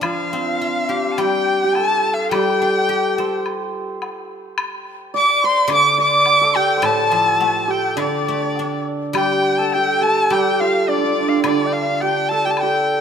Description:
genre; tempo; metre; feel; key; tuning
chinese traditional, Chinese chamber ensemble; 105 BPM; 4/4; rubato; D yu mode; A4 = 435 Hz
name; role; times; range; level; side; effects
rich erhu; melody; 0.0-13.0 s; D5 to D6; -19 LUFS; right 1 dB; none
bright reedy dizi; second line; 0.0-13.0 s; D5 to D6; -23 LUFS; left 6 dB; none
hammered dulcimer; second line; 0.0-13.0 s; D4 to D5; -22 LUFS; right 4 dB; none
guzheng; accompaniment; 0.0-13.0 s; A2 to A4; -24 LUFS; left 3 dB; none
woodblock; percussion; 0.0-12.7 s; none; -28 LUFS; left 3 dB; none
room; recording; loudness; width
moderate concert hall reverb, RT60 2.1 s; close, detailed microphones; -15 LUFS; side -7 dB against mid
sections
0.0-9.1 A section; 9.1-13.0 B section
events
none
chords
none

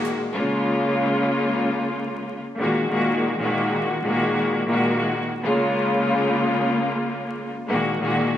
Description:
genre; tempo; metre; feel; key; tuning
hip hop; 94 BPM; 4/4; swing 54% on 16ths; Bb minor; A4 = 442 Hz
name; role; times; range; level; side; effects
bright studio string section; accompaniment; 0.0-8.4 s; Bb2 to Gb4; -20 LUFS; left 1 dB; cassette tape, high-pass filter, low-pass filter
room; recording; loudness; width
moderate lush hall reverb, RT60 1.9 s, small room ambience; bright 1980s-style digital production, vinyl crackle; -20 LUFS; side -11 dB against mid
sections
0.4-8.4 A section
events
none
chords
0.4 Bbm7; 2.6 Gb69/Bb; 5.5 Bbm7; 7.7 Gb69/Bb

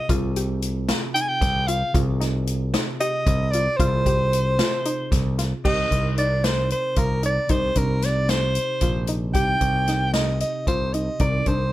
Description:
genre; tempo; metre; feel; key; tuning
progressive instrumental, band music in an uneven meter; 227 BPM (eighths); 7/8; straight; C minor; A4 = 440 Hz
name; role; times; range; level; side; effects
mellow soprano saxophone; melody; 0.0-11.7 s; Bb4 to Ab5; -23 LUFS; equal; plate reverb
mellow tine electric piano; accompaniment; 0.0-11.7 s; C3 to Bb4; -31 LUFS; right 1 dB; medium stereo tremolo, plate reverb
warbly dusty pluck; arpeggios; 0.1-11.7 s; D4 to G4; -31 LUFS; left 2 dB; chorus, plate reverb
picked electric bass; bass; 0.1-11.7 s; Bb1 to C2; -24 LUFS; equal; none
swinging big-band drum kit; drums; 0.1-11.6 s; crash cymbal, hi-hat, kick drum, snare drum; -25 LUFS; equal; none
room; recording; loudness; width
light reverb; none; -20 LUFS; side -15 dB against mid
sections
0.0-5.6 A section; 5.6-11.7 B section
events
none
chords
0.0 Fm/C; 5.6 Cm7

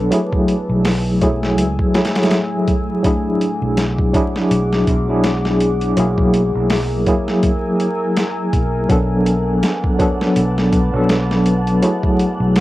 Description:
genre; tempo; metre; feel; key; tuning
trip hop; 82 BPM; 4/4; swing 57% on 16ths; unclear; A4 = 436 Hz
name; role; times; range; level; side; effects
tine electric piano; accompaniment; 0.0-12.6 s; F#3 to A4; -17 LUFS; equal; overdrive, medium stereo tremolo, cassette tape, tape echo
deep dark ambient pad; sustained chords; 0.0-12.6 s; A3 to E6; -24 LUFS; left 2 dB; chorus, built-in reverb, cassette tape
fingered electric bass; bass; 0.0-12.6 s; B1 to C#2; -20 LUFS; equal; none
boom bap sampler-style drum kit; drums; 0.1-12.6 s; hi-hat, kick drum, snare drum; -20 LUFS; equal; cassette tape
wind-like tuned noise texture; texture; 9.3-12.6 s; F#5; -33 LUFS; right 4 dB; built-in reverb, cassette tape
room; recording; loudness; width
light reverb; home recording on cassette, vinyl crackle; -14 LUFS; side -16 dB against mid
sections
0.0-12.6 A section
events
none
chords
0.1 F#m9/B; 3.0 E9/B; 6.0 F#9/B; 8.9 Bm7; 11.8 F#m9

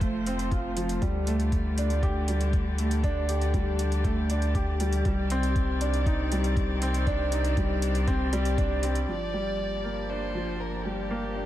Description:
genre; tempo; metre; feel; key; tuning
piano and strings electronica; 119 BPM; 4/4; straight; G minor; A4 = 439 Hz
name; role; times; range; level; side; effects
dark string quartet; sustained chords; 0.0-11.5 s; C3 to D5; -36 LUFS; left 3 dB; sidechain pumping
warm grand piano; riff; 0.0-11.5 s; F3 to G4; -30 LUFS; equal; low-pass filter, ping-pong delay
warm sub bass; bass; 0.0-11.5 s; F1 to D2; -28 LUFS; equal; sidechain pumping
electronic hi-hat; drums; 0.0-9.1 s; none; -40 LUFS; right 1 dB; overdrive, low-pass filter on hats
electronic kick drum; drums; 0.0-8.7 s; none; -28 LUFS; equal; none
dark violin; melody; 9.1-11.5 s; G4 to D5; -35 LUFS; right 1 dB; ping-pong delay
room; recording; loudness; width
light reverb, small room ambience; none; -25 LUFS; side -13 dB against mid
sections
0.0-9.1 A section; 9.1-11.5 B section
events
filter sweep on grand piano 9.1-11.5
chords
0.0 F; 1.0 Dsus4; 5.1 Cmadd9; 9.1 Gm7

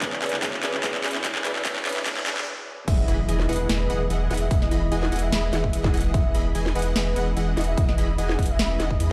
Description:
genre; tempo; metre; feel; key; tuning
future bass; 147 BPM; 4/4; swing 54% on 16ths, half-time; E major; A4 = 438 Hz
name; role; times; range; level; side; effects
felt-muted upright piano; accompaniment; 0.0-2.4 s; C#3 to C#5; -37 LUFS; equal; sidechain pumping, digital delay
ethereal airy pad; sustained chords; 0.2-9.1 s; D3 to F#4; -39 LUFS; equal; ensemble chorus, built-in reverb, sidechain pumping
supersaw stab; riff; 0.0-9.1 s; E3 to B5; -32 LUFS; equal; analog chorus, sidechain pumping, digital delay
saturated sub bass; bass; 0.0-9.1 s; E1 to E2; -28 LUFS; equal; sidechain pumping
electronic kick drum; drums; 0.0-9.0 s; none; -26 LUFS; equal; none
trap drum kit; drums; 0.0-9.1 s; crash cymbal, handclaps, hi-hat, snare drum; -30 LUFS; equal; overdrive
riser and impact; sound effects; 0.6-4.5 s; none; -36 LUFS; equal; none
soft octave-layered synth lead; melody; 2.9-9.1 s; B4 to F#5; -34 LUFS; equal; chorus, sidechain pumping, digital delay
room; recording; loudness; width
light reverb; played on a big sound system in a bare room, stone room reverb, high-pass filter; -24 LUFS; mono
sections
0.0-2.9 A section; 2.9-9.1 B section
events
build-up 0.0-2.9; drum fill 0.0-2.5; stop 2.5-2.9; drop 2.9-9.1; impact 2.9-4.5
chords
0.0 Dmaj7; 2.9 Emaj7

